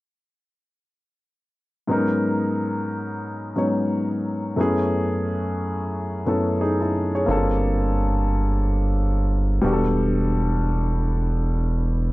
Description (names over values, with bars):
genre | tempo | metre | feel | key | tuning
R&B | 89 BPM | 4/4 | swing 57% on 16ths | unclear | A4 = 440 Hz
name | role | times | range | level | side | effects
warm grand piano | accompaniment | 1.9-12.1 s | F#2 to C#5 | -22 LUFS | left 1 dB | none
rubbery square bass | bass | 7.3-12.1 s | E1 to G1 | -21 LUFS | equal | none
room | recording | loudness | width
light reverb | none | -20 LUFS | side -19 dB against mid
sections
1.9-12.1 A section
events
none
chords
1.9 G#m11; 4.6 F#m11; 7.3 Gm11; 9.6 Em11